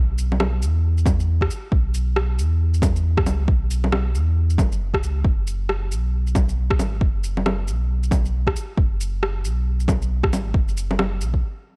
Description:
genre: future garage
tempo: 136 BPM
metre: 4/4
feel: swing 61% on 16ths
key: unclear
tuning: A4 = 440 Hz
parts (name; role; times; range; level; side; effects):
- warm sub bass; bass; 0.0-11.4 s; F#1 to E2; -24 LUFS; equal; tube saturation, sidechain pumping
- electronic shaker, bongos and rim click; drums; 0.2-11.3 s; none; -27 LUFS; equal; overdrive, small room ambience
- electronic kick drum; drums; 1.1-11.4 s; none; -23 LUFS; equal; overdrive, small room ambience
room: digital ambience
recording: none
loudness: -21 LUFS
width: mono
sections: 0.0-11.8 A section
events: stop 11.4-11.8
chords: none

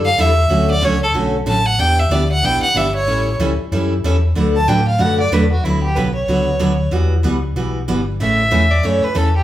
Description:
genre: country, western swing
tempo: 187 BPM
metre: 4/4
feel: swing 63% on 8ths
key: D major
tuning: A4 = 440 Hz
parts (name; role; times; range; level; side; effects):
- picked steel-string acoustic guitar; accompaniment; 0.0-9.3 s; C#3 to B4; -19 LUFS; right 1 dB; none
- hollow-body short-scale fingered electric bass; bass; 0.0-9.4 s; G1 to A2; -18 LUFS; equal; none
- clear fiddle; melody; 0.1-3.4 s; A4 to A5; -17 LUFS; equal; none
- rich fiddle; second line; 4.6-9.4 s; E4 to A5; -18 LUFS; equal; none
room: moderate large studio reverb, RT60 1.0 s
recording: band playing live in one room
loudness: -14 LUFS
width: side -13 dB against mid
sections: 0.0-4.4 A section; 4.4-9.4 A section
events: fiddle solo 0.0-4.4, 4.4-9.4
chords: 0.0 A7sus4; 0.5 Dmaj7; 1.8 Em7; 3.1 A6; 4.4 D6; 5.6 Bm; 6.9 Emadd9; 8.2 A

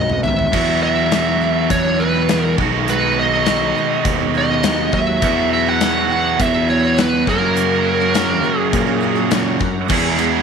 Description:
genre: classic rock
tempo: 102 BPM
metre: 4/4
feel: straight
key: unclear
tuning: A4 = 440 Hz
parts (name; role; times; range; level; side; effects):
- biting lead guitar; melody; 0.0-9.3 s; A#4 to F#5; -19 LUFS; equal; overdrive
- picked steel-string acoustic guitar; accompaniment; 0.0-10.4 s; E2 to G#4; -27 LUFS; right 12 dB; none
- sludgy distorted guitar; riff; 0.0-10.4 s; F#2 to E4; -24 LUFS; left 13 dB; overdrive
- fuzz picked electric bass; bass; 0.0-10.4 s; B1 to A#2; -22 LUFS; equal; overdrive
- gated 80s drum kit; drums; 0.1-10.3 s; crash cymbal, hi-hat, kick drum, ride cymbal, snare drum, toms; -22 LUFS; left 4 dB; none
- bright tonewheel organ; sustained chords; 0.5-10.4 s; F#3 to B4; -30 LUFS; equal; none
- tight distorted guitar; riff; 0.5-10.4 s; E2 to G#4; -19 LUFS; right 14 dB; distortion
room: light reverb, small room ambience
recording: 1960s-style stereo with parts hard left and right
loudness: -14 LUFS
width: side -6 dB against mid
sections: 0.5-9.9 A section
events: drum fill 0.0-0.5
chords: 0.0 B7; 0.5 Esus2; 2.6 B6; 5.2 Esus2; 7.3 F#; 9.9 E

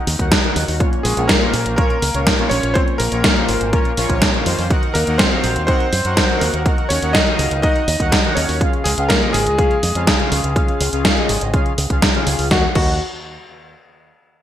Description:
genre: italo disco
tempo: 123 BPM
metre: 4/4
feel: straight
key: Eb dorian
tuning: A4 = 440 Hz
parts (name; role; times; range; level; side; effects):
- clear electric grand piano; melody; 0.0-13.0 s; Eb3 to Eb5; -21 LUFS; equal; digital delay
- analog synth brass; stabs; 0.0-12.9 s; Bb2 to Gb5; -22 LUFS; left 1 dB; chorus
- fingered electric bass with an envelope filter; bass; 0.1-13.0 s; Ab1 to Bb2; -22 LUFS; equal; none
- gated 80s digital drum machine; drums; 0.1-12.9 s; crash cymbal, hi-hat, snare drum; -19 LUFS; equal; gated reverb, gated reverb snare
- electronic kick drum; drums; 0.2-12.9 s; none; -19 LUFS; equal; overdrive
room: moderate plate reverb, RT60 1.5 s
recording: bright 1980s-style digital production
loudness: -14 LUFS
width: side -11 dB against mid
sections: 0.0-12.5 A section; 12.5-14.4 B section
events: none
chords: 0.0 Ebm; 0.8 Bbm; 4.7 Ebm; 8.6 Db; 12.5 Ebm

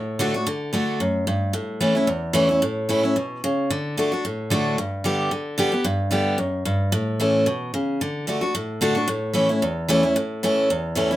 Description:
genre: bluegrass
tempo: 223 BPM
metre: 4/4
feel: swing 54% on 8ths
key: D major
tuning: A4 = 439 Hz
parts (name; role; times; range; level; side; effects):
- picked steel-string acoustic guitar; solo; 0.0-11.2 s; E2 to G4; -20 LUFS; equal; none
room: moderate studio ambience, RT60 0.5 s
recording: none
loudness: -20 LUFS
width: side -14 dB against mid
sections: 0.0-11.2 A section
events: none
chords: 0.0 D; 1.5 A; 3.7 D; 4.8 G; 6.9 A; 8.0 D; 9.1 A

